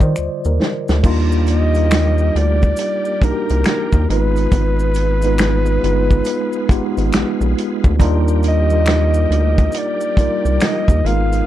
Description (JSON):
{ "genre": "R&B, neo-soul", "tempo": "69 BPM", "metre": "4/4", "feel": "swing 64% on 16ths", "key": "Eb major", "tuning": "A4 = 440 Hz", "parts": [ { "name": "mellow tine electric piano", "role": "accompaniment", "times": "0.0-11.5 s", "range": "D3 to Eb5", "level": "-20 LUFS", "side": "equal", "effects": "medium stereo tremolo" }, { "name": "rubbery square bass", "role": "bass", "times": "0.0-11.4 s", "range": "G1 to Eb3", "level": "-16 LUFS", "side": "equal", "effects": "none" }, { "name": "warm soul drum kit", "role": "drums", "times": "0.0-11.5 s", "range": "crash cymbal, finger snaps, hi-hat, kick drum, snare drum", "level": "-17 LUFS", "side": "equal", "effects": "vintage 12-bit sampler grit" }, { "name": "maracas and finger snaps", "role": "percussion", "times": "0.0-11.5 s", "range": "none", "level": "-34 LUFS", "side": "left 3 dB", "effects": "none" }, { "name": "bright tonewheel organ", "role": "sustained chords", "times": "1.0-11.5 s", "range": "G3 to Cb5", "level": "-30 LUFS", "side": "equal", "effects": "slow rotary speaker, chorus vibrato" }, { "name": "warm flugelhorn", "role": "melody", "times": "1.5-11.5 s", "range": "Bb4 to F5", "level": "-22 LUFS", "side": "equal", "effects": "none" } ], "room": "little or no reverb", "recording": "dark, warm production", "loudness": "-14 LUFS", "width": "side -13 dB against mid", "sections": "0.0-1.0 A section; 1.0-11.5 B section", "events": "tine electric piano solo 0.0-1.0; drum fill 0.2-1.0", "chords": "0.0 Ebmaj9; 1.0 Ebmaj7; 4.1 Abm6; 8.0 Ebmaj7" }